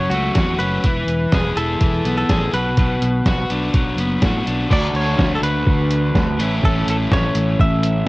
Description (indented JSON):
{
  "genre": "indie rock",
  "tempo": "124 BPM",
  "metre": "4/4",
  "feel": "straight",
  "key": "unclear",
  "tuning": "A4 = 440 Hz",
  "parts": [
    { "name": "direct-recorded clean electric guitar", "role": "melody", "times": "0.0-8.1 s", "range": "F#4 to E5", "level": "-24 LUFS", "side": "equal", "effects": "cassette tape" },
    { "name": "biting overdriven guitar", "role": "riff", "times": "0.0-8.1 s", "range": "A2 to G#4", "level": "-21 LUFS", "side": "left 2 dB", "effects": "cassette tape" },
    { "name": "fingered electric bass", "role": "bass", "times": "0.0-8.0 s", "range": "E1 to A2", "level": "-22 LUFS", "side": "equal", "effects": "none" },
    { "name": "lo-fi sampler-style drum kit", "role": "drums", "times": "0.1-7.9 s", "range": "crash cymbal, hi-hat, kick drum, snare drum", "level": "-19 LUFS", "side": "equal", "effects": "cassette tape" },
    { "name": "crunchy overdriven guitar", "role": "riff", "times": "4.7-8.1 s", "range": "A2 to F#4", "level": "-28 LUFS", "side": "right 6 dB", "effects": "lush chorus, cassette tape" }
  ],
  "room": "little or no reverb",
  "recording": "home recording on cassette",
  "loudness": "-16 LUFS",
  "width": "side -21 dB against mid",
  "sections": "0.0-4.7 A section; 4.7-8.1 B section",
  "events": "none",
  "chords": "0.0 F#m; 0.8 E; 2.5 Bm; 4.7 D; 6.4 A"
}